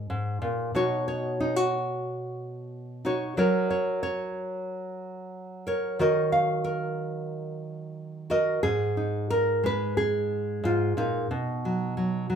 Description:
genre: folk, solo fingerstyle acoustic guitar.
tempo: 91 BPM.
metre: 4/4.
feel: straight.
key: G# dorian.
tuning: A4 = 440 Hz.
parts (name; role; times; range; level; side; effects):
nylon-string guitar; solo; 0.0-12.4 s; G#2 to E#5; -26 LUFS; equal; none.
room: moderate large studio reverb, RT60 0.9 s.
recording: band playing live in one room.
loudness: -25 LUFS.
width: side -7 dB against mid.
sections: 0.0-8.6 A section; 8.6-12.4 B section.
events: none.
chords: 0.0 G#sus2; 0.8 Badd9; 3.4 F#; 6.0 D#m; 8.6 G#sus2; 11.3 B.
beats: 0.10 | 0.75 1.41 2.06 2.72 | 3.37 4.02 4.68 5.33 | 5.99 6.65 7.31 7.97 | 8.64 9.31 9.98 10.64 | 11.31 11.97.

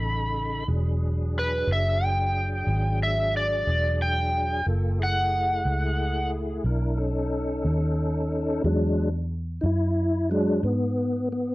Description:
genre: slow blues.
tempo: 60 BPM (dotted quarters).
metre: 12/8.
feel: straight.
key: E mixolydian.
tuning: A4 = 440 Hz.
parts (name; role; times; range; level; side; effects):
overdriven slide guitar; melody; 0.0-6.3 s; B4 to B5; -26 LUFS; equal; none.
tonewheel organ; sustained chords; 0.0-11.5 s; C#3 to A#4; -28 LUFS; left 1 dB; slow rotary speaker, chorus vibrato.
vintage muted fingered electric bass; bass; 0.0-11.5 s; E1 to G#2; -26 LUFS; equal; tube saturation.
room: light reverb.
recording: worn, warbling old tape, cassette tape, warbly pitch drift.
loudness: -23 LUFS.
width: side -19 dB against mid.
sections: 0.0-8.6 A section; 8.6-11.5 B section.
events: tonewheel organ solo 8.6-11.5.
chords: 0.0 B9; 0.7 E9; 4.7 F#m7; 6.7 B9; 8.6 E9.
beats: | 0.67 1.67 2.67 3.66 | 4.66 5.66 6.65 7.65 | 8.64 9.64 10.64.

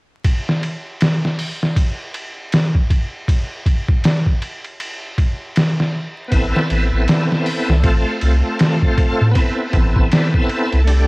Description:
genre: trip hop.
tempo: 79 BPM.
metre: 4/4.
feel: swing 60% on 16ths.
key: A minor.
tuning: A4 = 440 Hz.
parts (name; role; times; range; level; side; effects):
trip hop sampler-style drum kit; drums; 0.2-11.1 s; hi-hat, kick drum, ride cymbal, snare drum; -17 LUFS; equal; studio ambience, cassette tape.
bright tonewheel organ; accompaniment; 6.3-11.1 s; A3 to A4; -20 LUFS; equal; chorus vibrato, slow rotary speaker, tremolo, cassette tape, tape echo.
soft dub sub bass; bass; 6.3-11.1 s; A1 to A2; -15 LUFS; equal; none.
room: little or no reverb.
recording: home recording on cassette, vinyl crackle.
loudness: -15 LUFS.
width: side -25 dB against mid.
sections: 0.2-11.1 A section.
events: none.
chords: 0.2 N.C.; 6.3 Amadd9; 7.8 F/A; 9.4 Amadd9.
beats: | 0.24 1.00 1.76 2.52 | 3.28 4.04 4.80 5.56 | 6.32 7.08 7.84 8.60 | 9.36 10.12 10.88.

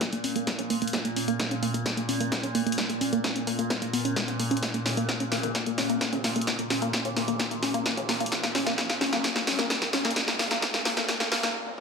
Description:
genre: driving peak-time techno.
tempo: 130 BPM.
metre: 4/4.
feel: straight.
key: Bb phrygian.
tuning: A4 = 439 Hz.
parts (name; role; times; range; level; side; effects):
tight sequenced synth; riff; 0.0-11.5 s; Ab3 to Db4; -29 LUFS; equal; chorus, sidechain pumping, tape echo.
overtone-sweeping drone; drone; 0.0-11.5 s; Bb2; -34 LUFS; equal; chorus, built-in reverb, phaser, sidechain pumping.
electronic kick drum; drums; 0.0-11.2 s; none; -36 LUFS; equal; overdrive, high-pass filter on kick.
punchy analog drum machine; drums; 0.0-11.8 s; hi-hat, snare drum, toms; -28 LUFS; equal; sidechain pumping on hats, high-pass filter on hats, sidechain pumping on toms, high-pass filter on toms, high-pass filter on snare, high-pass filter on room.
riser; sound effects; 6.5-11.5 s; none; -41 LUFS; right 2 dB; none.
room: wet stone room reverb, RT60 1.2 s, studio reverb.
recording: high-pass filter.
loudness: -25 LUFS.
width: side -5 dB against mid.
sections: 0.0-11.8 A section.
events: build-up 0.0-11.8; drum fill 0.0-11.5; filter sweep on synth arpeggio sound 0.0-11.8; filter sweep 0.0-11.8; stop 11.5.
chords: 0.0 Bbm.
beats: 0.01 0.47 | 0.93 1.40 1.86 2.32 | 2.78 3.24 3.70 4.17 | 4.63 5.09 5.55 6.01 | 6.47 6.93 7.39 7.86 | 8.32 8.78 9.24 9.70 | 10.16 10.63 11.09 11.55.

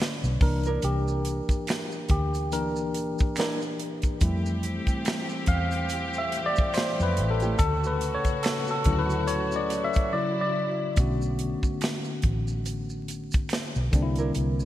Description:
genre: R&B, neo-soul.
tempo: 71 BPM.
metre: 4/4.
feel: swing 57% on 16ths.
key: unclear.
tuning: A4 = 445 Hz.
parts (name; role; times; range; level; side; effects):
tine electric piano; accompaniment; 0.0-14.7 s; C#3 to F5; -28 LUFS; left 1 dB; medium stereo tremolo.
tight funk drum kit; drums; 0.0-14.6 s; hi-hat, kick drum, snare drum; -27 LUFS; equal; gated reverb.
vintage muted fingered electric bass; bass; 0.2-14.7 s; A1 to F2; -28 LUFS; equal; none.
maracas and finger snaps; percussion; 0.2-14.7 s; none; -42 LUFS; right 5 dB; none.
nylon-string guitar; second line; 0.7-7.5, 14.2-14.3 s; A3 to Bb4; -35 LUFS; right 4 dB; none.
warm studio string section; sustained chords; 4.2-11.0 s; C#3 to G4; -33 LUFS; equal; none.
room: light reverb, small room ambience.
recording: bright 1980s-style digital production, vinyl crackle.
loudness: -24 LUFS.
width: side -13 dB against mid.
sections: 0.0-11.0 A section; 11.0-14.7 B section.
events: tine electric piano solo 0.0-11.0; silent gap 10.1-11.0.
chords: 0.4 C9; 4.2 Fmaj9; 7.6 Dmaj7; 10.1 Dmaj9; 11.0 Bm9; 13.9 C9.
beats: | 0.83 1.68 2.52 3.37 | 4.21 5.06 5.90 6.75 | 7.59 8.44 9.28 10.13 | 10.97 11.82 12.66 13.51 | 14.35.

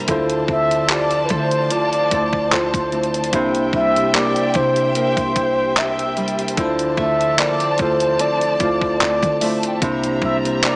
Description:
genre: contemporary R&B.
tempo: 74 BPM.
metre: 4/4.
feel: swing 54% on 16ths.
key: D minor.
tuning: A4 = 440 Hz.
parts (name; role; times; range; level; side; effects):
mellow tine electric piano; accompaniment; 0.0-10.8 s; C3 to C5; -21 LUFS; equal; medium stereo tremolo.
warm studio string section; sustained chords; 0.0-10.8 s; F3 to Bb5; -25 LUFS; equal; sidechain pumping.
nylon-string guitar; arpeggios; 0.0-10.8 s; C3 to A4; -27 LUFS; right 1 dB; digital delay.
soft 808-style bass; bass; 0.0-10.6 s; C2 to D3; -31 LUFS; equal; none.
soft synth bell; texture; 0.0-10.8 s; G4 to C6; -34 LUFS; equal; none.
detuned 8-bit digital drum machine; drums; 0.1-10.8 s; handclaps, hi-hat, kick drum; -21 LUFS; equal; none.
mellow horn-like synth lead; melody; 0.5-10.8 s; B4 to E5; -19 LUFS; equal; chorus, digital delay.
room: light reverb.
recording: small speaker sound.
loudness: -16 LUFS.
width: side -28 dB against mid.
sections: 0.0-10.8 A section.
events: none.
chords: 0.1 Dm7; 3.3 C7; 6.6 Dm7; 9.8 C7.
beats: | 0.09 0.90 1.71 2.52 | 3.33 4.14 4.95 5.76 | 6.57 7.38 8.20 9.01 | 9.82 10.63.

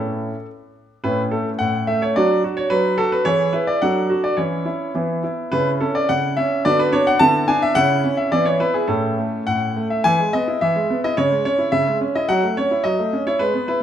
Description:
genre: classical-period piano sonatina.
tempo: 107 BPM.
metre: 2/4.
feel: rubato.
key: A major, E major from 10.0 s.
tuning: A4 = 444 Hz.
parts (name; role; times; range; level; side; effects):
clear grand piano; solo; 0.0-13.8 s; A2 to A5; -17 LUFS; equal; none.
room: moderate recital hall reverb, RT60 1.4 s.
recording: minimal, uncompressed stereo recording.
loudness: -17 LUFS.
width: side -10 dB against mid.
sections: 0.0-1.0 A section; 1.0-10.0 A section; 10.0-13.8 B section.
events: none.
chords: 0.0 A; 2.2 D/F#; 3.3 E; 3.8 D/F#; 4.4 C#m/E; 4.9 E5; 5.5 C#madd11; 6.7 Bm/D; 7.2 E5/D; 7.8 C#madd11; 8.3 E5; 8.9 A; 10.0 E; 11.2 C#m; 12.3 F#m7.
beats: 0.45 | 1.04 1.60 | 2.16 2.71 | 3.26 3.81 | 4.38 4.95 | 5.53 6.09 | 6.65 7.21 | 7.76 8.31 | 8.88 9.47 | 10.04 10.61 | 11.17 11.73 | 12.28 12.83 | 13.39.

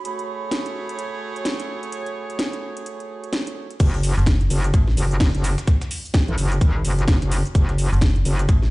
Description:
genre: bass house.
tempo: 128 BPM.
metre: 4/4.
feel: swing 60% on 16ths.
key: F# minor.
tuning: A4 = 440 Hz.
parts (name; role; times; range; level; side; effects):
warbly tape-like pad; texture; 0.0-3.8 s; F#4 to B5; -35 LUFS; right 4 dB; chorus, built-in reverb, sidechain pumping.
mellow horn section; stabs; 0.1-3.8 s; A3 to C#5; -30 LUFS; right 4 dB; sidechain pumping, digital delay.
house drum kit; drums; 0.1-8.7 s; cabasa, crash cymbal, hi-hat, snare drum; -28 LUFS; equal; overdrive.
metallic wobble bass; bass; 3.8-8.5 s; F#1 to A1; -20 LUFS; equal; chorus, overdrive, sidechain pumping.
dusty soul sampler-style drum kit; drums; 3.8-8.6 s; hi-hat, shaker, snare drum; -39 LUFS; right 1 dB; none.
electronic kick drum; drums; 3.8-8.6 s; none; -16 LUFS; equal; overdrive.
metallic FM bass; bass; 4.2-5.0, 7.9-8.7 s; F#1 to A1; -18 LUFS; equal; overdrive, sidechain pumping.
room: little or no reverb.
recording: played on a big sound system in a bare room, large studio reverb, nothing above 10.5 kHz.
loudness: -19 LUFS.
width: side -21 dB against mid.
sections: 0.0-3.8 A section; 3.8-8.7 B section.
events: filter sweep on horn section 0.0-3.8; drop 3.8-8.7.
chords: 0.0 F#madd9; 3.8 N.C..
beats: | 0.05 0.52 0.99 1.46 | 1.93 2.39 2.86 3.33 | 3.80 4.27 4.74 5.21 | 5.67 6.14 6.61 7.08 | 7.55 8.02 8.49.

